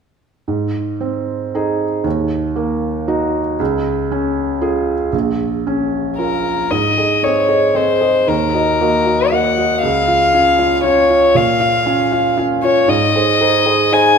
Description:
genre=neoclassical piano and strings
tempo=116 BPM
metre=3/4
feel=rubato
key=unclear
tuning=A4 = 440 Hz
part: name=felt-muted upright piano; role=accompaniment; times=0.5-14.2 s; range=Bb1 to F5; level=-16 LUFS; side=right 2 dB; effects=none
part: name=rich violin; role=melody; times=6.2-14.2 s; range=Bb4 to Ab5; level=-14 LUFS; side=left 4 dB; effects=none
room=wet recital hall reverb, RT60 1.5 s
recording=recorded in a church or concert hall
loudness=-13 LUFS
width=side -6 dB against mid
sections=0.5-6.7 A section; 6.7-14.2 B section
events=none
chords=0.5 Ab; 2.0 Ebm; 3.6 Db; 5.1 Bbm; 6.7 Ab; 8.3 Ebm; 9.8 Db; 11.4 Bbm; 12.9 Ab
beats=| 0.48 1.01 1.53 | 2.05 2.57 3.08 | 3.60 4.11 4.61 | 5.13 5.65 6.18 | 6.72 7.24 7.76 | 8.28 8.80 9.31 | 9.82 10.33 10.84 | 11.35 11.87 12.38 | 12.89 13.41 13.93

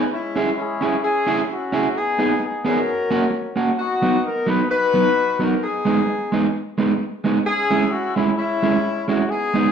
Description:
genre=ska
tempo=131 BPM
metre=4/4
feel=swing 56% on 8ths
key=unclear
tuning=A4 = 440 Hz
part: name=mellow horn section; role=melody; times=0.0-9.7 s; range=G#3 to B4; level=-21 LUFS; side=left 3 dB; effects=plate reverb
part: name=electric guitar at the edge of break-up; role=accompaniment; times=0.0-9.7 s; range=F#3 to G#4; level=-20 LUFS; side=right 3 dB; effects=slapback echo
room=wet studio reverb, RT60 0.8 s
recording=dark, warm production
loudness=-18 LUFS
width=side -7 dB against mid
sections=0.0-9.7 A section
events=none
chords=0.1 C#m; 1.9 G#m; 2.9 F#; 3.8 B; 5.6 G#m; 7.4 C#m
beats=| 0.10 0.56 1.02 1.48 | 1.94 2.39 2.85 3.31 | 3.77 4.23 4.69 5.15 | 5.61 6.07 6.53 6.99 | 7.45 7.91 8.36 8.82 | 9.28

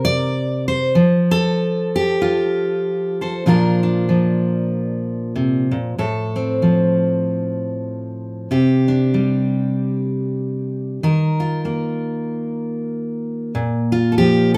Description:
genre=folk, solo fingerstyle acoustic guitar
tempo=95 BPM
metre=4/4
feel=swing 58% on 8ths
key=Bb major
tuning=A4 = 440 Hz
part: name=fingerpicked steel-string acoustic guitar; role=solo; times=0.0-14.6 s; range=A2 to D5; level=-19 LUFS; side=equal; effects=none
room=moderate studio reverb, RT60 1.0 s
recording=none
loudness=-19 LUFS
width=mono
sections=0.0-3.5 A section; 3.5-13.5 B section; 13.5-14.6 C section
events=none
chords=0.0 N.C.; 0.9 F; 3.5 Bb; 6.0 F/A; 8.5 Csus2; 11.0 Ebsus2; 13.5 Bb5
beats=0.32 | 0.95 1.58 2.21 2.83 | 3.46 4.09 4.72 5.35 | 5.98 6.62 7.25 7.88 | 8.51 9.14 9.77 10.40 | 11.03 11.66 12.29 12.92 | 13.55 14.18

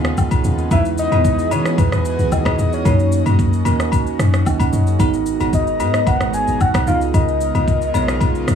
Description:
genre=amapiano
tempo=112 BPM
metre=4/4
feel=straight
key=G# minor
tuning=A4 = 444 Hz
part: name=bell-like tine electric piano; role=accompaniment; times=0.0-8.6 s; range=G#3 to F#5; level=-23 LUFS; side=right 10 dB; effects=phaser
part: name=airy breathy pad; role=sustained chords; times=0.0-8.6 s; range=C#3 to A#5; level=-25 LUFS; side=left 2 dB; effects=chorus
part: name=deep log drum bass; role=bass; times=0.0-8.6 s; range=G#1 to E3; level=-19 LUFS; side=left 1 dB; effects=none
part: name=smooth R&B drum kit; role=drums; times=0.0-8.6 s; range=kick drum, rim click, shaker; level=-19 LUFS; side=equal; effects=none
part: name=woodblock and agogo bells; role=percussion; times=0.2-8.3 s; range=none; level=-27 LUFS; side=left 10 dB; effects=none
part: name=soft octave-layered synth lead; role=melody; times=0.7-8.2 s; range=B4 to G#5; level=-21 LUFS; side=left 2 dB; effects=chorus, tape echo
room=light reverb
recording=vinyl crackle, studio reverb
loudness=-14 LUFS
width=side -8 dB against mid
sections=0.0-8.6 A section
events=none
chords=0.0 C#13; 0.7 Emaj9; 2.9 D#m7; 5.0 G#m9; 6.9 C#13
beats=0.18 | 0.71 1.25 1.78 2.32 | 2.85 3.39 3.93 4.46 | 5.00 5.53 6.07 6.61 | 7.14 7.68 8.21

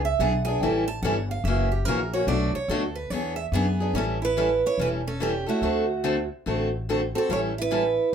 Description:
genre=acoustic string swing (jazz manouche)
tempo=144 BPM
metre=4/4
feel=swing 64% on 8ths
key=A mixolydian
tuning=A4 = 441 Hz
part: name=picked steel-string acoustic guitar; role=second line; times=0.0-8.1 s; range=A3 to A5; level=-30 LUFS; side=right 6 dB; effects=none
part: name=upright bass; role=bass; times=0.0-8.1 s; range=E1 to F#2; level=-29 LUFS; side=left 1 dB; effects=none
part: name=picked steel-string acoustic guitar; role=accompaniment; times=0.2-7.8 s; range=B2 to A4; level=-26 LUFS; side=left 1 dB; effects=none
part: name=picked steel-string acoustic guitar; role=melody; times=3.6-8.1 s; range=F#4 to C#5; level=-26 LUFS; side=right 3 dB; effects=none
room=moderate studio reverb, RT60 0.6 s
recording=none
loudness=-23 LUFS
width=side -8 dB against mid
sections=0.0-4.0 A section; 4.0-8.1 B section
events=steel-string acoustic guitar solo 0.0-4.0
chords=0.0 E7; 0.6 A7; 1.5 F#7; 2.3 Bm7; 3.1 E7; 4.0 A7; 5.6 D7; 7.3 A7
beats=0.20 | 0.62 1.03 1.45 1.87 | 2.28 2.70 3.12 3.53 | 3.95 4.37 4.79 5.20 | 5.62 6.04 6.45 6.87 | 7.29 7.71 8.12

